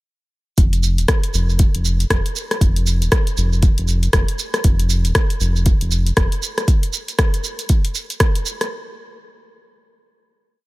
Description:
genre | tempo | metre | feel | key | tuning
afro house | 118 BPM | 4/4 | swing 60% on 16ths | unclear | A4 = 440 Hz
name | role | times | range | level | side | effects
round analog bass | bass | 0.6-6.3 s | Eb1 to F1 | -18 LUFS | equal | tube saturation, sidechain pumping
deep house drum kit | drums | 0.6-8.7 s | hi-hat, rim click, shaker | -22 LUFS | equal | none
electronic kick drum | drums | 0.6-8.3 s | none | -16 LUFS | equal | none
room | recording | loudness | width
little or no reverb | none | -16 LUFS | side -20 dB against mid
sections
0.6-8.7 groove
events
none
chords
none

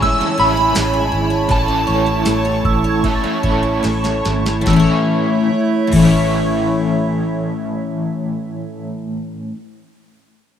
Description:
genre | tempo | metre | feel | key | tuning
dream pop | 71-83 BPM | 4/4 | straight | A major | A4 = 439 Hz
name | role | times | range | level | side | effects
shimmering bell with halo | melody | 0.0-3.8 s | A5 to E6 | -20 LUFS | right 1 dB | ensemble chorus, tape echo
overdriven semi-hollow guitar | accompaniment | 0.0-9.6 s | A2 to E4 | -22 LUFS | right 2 dB | tremolo, analog chorus
hollow soft pad | sustained chords | 0.0-8.8 s | A3 to C#6 | -21 LUFS | right 2 dB | chorus
picked twelve-string acoustic guitar | arpeggios | 0.0-9.6 s | A2 to C#5 | -19 LUFS | left 4 dB | analog chorus, tape echo
vintage muted fingered electric bass | bass | 0.0-9.5 s | G#1 to A1 | -22 LUFS | right 1 dB | none
booming analog drum machine | drums | 0.0-6.2 s | crash cymbal, kick drum, ride cymbal, snare drum, tambourine | -22 LUFS | right 1 dB | overdrive
worn celesta | texture | 0.0-9.1 s | B5 to A6 | -28 LUFS | right 8 dB | stereo widening, tape echo
room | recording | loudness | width
light reverb, digital ambience | rough home demo mix | -14 LUFS | side -9 dB against mid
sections
0.0-4.7 A section; 4.7-8.0 B section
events
slowing down 0.0-4.7; drum fill 3.8-4.7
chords
0.0 Amaj7; 4.7 A

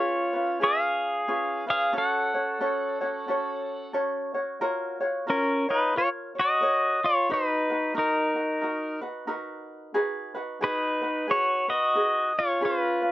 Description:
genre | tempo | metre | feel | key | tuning
Hawaiian | 90 BPM | 4/4 | swing 60% on 8ths | F# harmonic minor, F# major from 4.6 s | A4 = 439 Hz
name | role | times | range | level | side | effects
pedal steel guitar | melody | 0.0-13.1 s | C#4 to F#5 | -24 LUFS | equal | none
ukulele | accompaniment | 0.0-13.1 s | C#4 to C#5 | -30 LUFS | equal | none
room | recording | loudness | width
light reverb | none | -24 LUFS | side -16 dB against mid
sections
0.0-4.6 A section; 4.6-13.1 B section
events
none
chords
0.0 C#7; 1.9 F#m; 4.6 F#maj7; 7.3 Bmaj7; 9.9 G#m7

